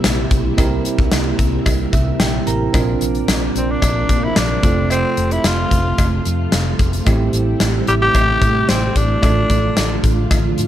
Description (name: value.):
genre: 1980s-style pop.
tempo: 111 BPM.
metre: 4/4.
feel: straight.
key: F major.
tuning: A4 = 439 Hz.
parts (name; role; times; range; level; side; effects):
bell-like tine electric piano; accompaniment; 0.0-10.7 s; A2 to Bb5; -22 LUFS; right 6 dB; fast stereo tremolo.
ensemble organ-string; sustained chords; 0.0-10.7 s; C3 to F4; -24 LUFS; equal; ensemble chorus.
vintage muted fingered electric bass; bass; 0.0-10.7 s; F1 to Bb2; -20 LUFS; left 1 dB; none.
gated 80s drum kit; drums; 0.0-10.7 s; hi-hat, kick drum, snare drum; -18 LUFS; left 1 dB; none.
cowbell; percussion; 0.0-10.4 s; none; -31 LUFS; left 3 dB; none.
raspy tenor saxophone; melody; 3.6-10.0 s; C4 to G4; -20 LUFS; left 1 dB; analog delay.
room: light reverb, small room ambience.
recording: none.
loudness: -14 LUFS.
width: side -12 dB against mid.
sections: 0.0-2.7 A section; 2.7-10.7 B section.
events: tine electric piano fill 1.7-2.7.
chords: 0.0 C7; 2.7 Bbadd9; 4.6 F; 7.1 Am7; 9.2 Dm/A.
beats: 0.04 | 0.58 1.12 1.66 2.20 | 2.74 3.28 3.82 4.37 | 4.91 5.45 5.99 6.53 | 7.07 7.61 8.15 8.69 | 9.23 9.77 10.31.